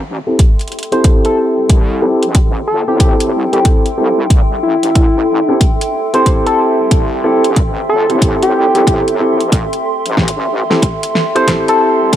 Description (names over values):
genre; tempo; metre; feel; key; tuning
glitch hop; 92 BPM; 4/4; swing 63% on 16ths; A minor; A4 = 440 Hz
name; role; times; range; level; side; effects
warbly tape-like pad; sustained chords; 0.6-12.2 s; A4 to C6; -20 LUFS; right 2 dB; chorus, built-in reverb, sidechain pumping
wobble bass; bass; 0.0-12.2 s; G1 to C2; -22 LUFS; equal; chorus, high-pass filter
dark baby grand piano; stabs; 0.3-12.2 s; C4 to A4; -15 LUFS; left 1 dB; sidechain pumping, low-pass filter, digital delay
electronic kick drum; drums; 0.4-12.2 s; none; -12 LUFS; equal; none
pop drum kit; drums; 0.4-12.2 s; hi-hat, snare drum; -20 LUFS; equal; none
sync lead; melody; 0.9-11.8 s; E4 to C5; -16 LUFS; left 1 dB; chorus, vintage 12-bit sampler grit, digital delay
room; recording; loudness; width
light reverb; high-pass filter; -10 LUFS; side -11 dB against mid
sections
0.0-12.2 A section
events
build-up 0.0-12.2; filter sweep on grand piano 0.0-12.2; filter sweep on analog synth lead 0.0-12.2; filter sweep 0.0-12.2; drum fill 10.2-12.2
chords
0.0 Am7